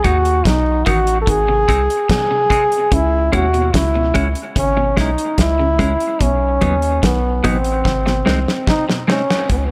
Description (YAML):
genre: dub reggae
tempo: 73 BPM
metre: 4/4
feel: straight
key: C# minor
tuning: A4 = 440 Hz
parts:
  - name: clear trombone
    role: melody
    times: 0.0-9.7 s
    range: B3 to A4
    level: -20 LUFS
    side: equal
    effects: low-pass filter, dub echo
  - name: clean electric guitar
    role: accompaniment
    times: 0.0-9.2 s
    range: F#3 to E4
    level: -25 LUFS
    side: equal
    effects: high-pass filter, low-pass filter, dub echo
  - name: electric guitar at the edge of break-up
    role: arpeggios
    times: 0.0-9.3 s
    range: G#2 to D#3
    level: -29 LUFS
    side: equal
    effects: lush chorus, dub echo
  - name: soft dub sub bass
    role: bass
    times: 0.0-9.7 s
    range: G#1 to D#2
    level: -22 LUFS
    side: equal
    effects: none
  - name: damped 70s drum kit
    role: drums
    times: 0.0-9.7 s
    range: hi-hat, kick drum, snare drum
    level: -21 LUFS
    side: equal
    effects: none
room: light reverb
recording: none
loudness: -16 LUFS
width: mono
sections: 0.0-9.5 A section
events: drum fill 7.9-9.5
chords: 0.0 B; 1.3 G#; 2.9 C#m; 6.2 B; 7.9 G#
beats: 0.45 1.27 2.10 | 2.92 3.74 4.56 5.39 | 6.21 7.03 7.85 8.68 | 9.50